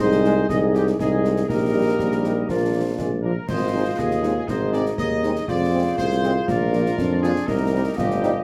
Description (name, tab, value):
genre	military-style march for wind band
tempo	120 BPM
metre	2/4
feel	straight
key	unclear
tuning	A4 = 440 Hz
part	clear trumpet section	melody	0.0-8.4 s	G4 to Eb5	-32 LUFS	equal	none
part	clear woodwind section	second line	0.0-8.4 s	F4 to Eb5	-32 LUFS	equal	none
part	mellow hollow small flute group	second line	0.0-3.0 s	G4 to Eb5	-36 LUFS	equal	none
part	mellow French horn section	accompaniment	0.0-8.3 s	G3 to Ab4	-26 LUFS	equal	none
part	warm tuba	bass	0.0-8.4 s	G1 to F2	-26 LUFS	equal	none
part	concert snare drum, concert bass drum and clash cymbals	drums	0.1-8.3 s	none	-33 LUFS	equal	none
part	warm trombone section	sustained chords	0.2-8.3 s	F3 to Eb4	-31 LUFS	equal	none
part	clear euphonium	second line	2.0-8.4 s	F3 to F4	-29 LUFS	equal	none
room	moderate studio reverb, RT60 0.6 s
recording	none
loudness	-21 LUFS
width	mono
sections	0.0-3.5 A section; 3.5-8.4 A section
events	none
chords	0.0 Ab/C; 1.5 Eb/Bb; 2.5 Bb; 3.5 Ab; 5.5 Fm; 6.5 Bb; 7.5 Cm7